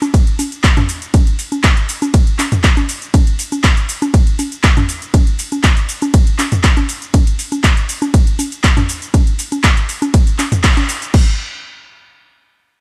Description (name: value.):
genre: house.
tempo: 120 BPM.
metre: 4/4.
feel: straight.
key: none.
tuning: none.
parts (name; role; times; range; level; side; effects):
house drum kit; drums; 0.0-11.2 s; cabasa, crash cymbal, handclaps, hi-hat, ride cymbal; -21 LUFS; equal; small room ambience.
electronic congas and toms; percussion; 0.0-10.9 s; none; -21 LUFS; equal; sidechain pumping on perc, small room ambience, sidechain pumping on toms.
electronic kick drum; drums; 0.1-11.2 s; none; -14 LUFS; equal; small room ambience.
room: little or no reverb.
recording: none.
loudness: -14 LUFS.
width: mono.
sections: 0.0-11.1 A section; 11.1-12.8 B section.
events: drop 0.0-11.1; band accent 10.6.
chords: none.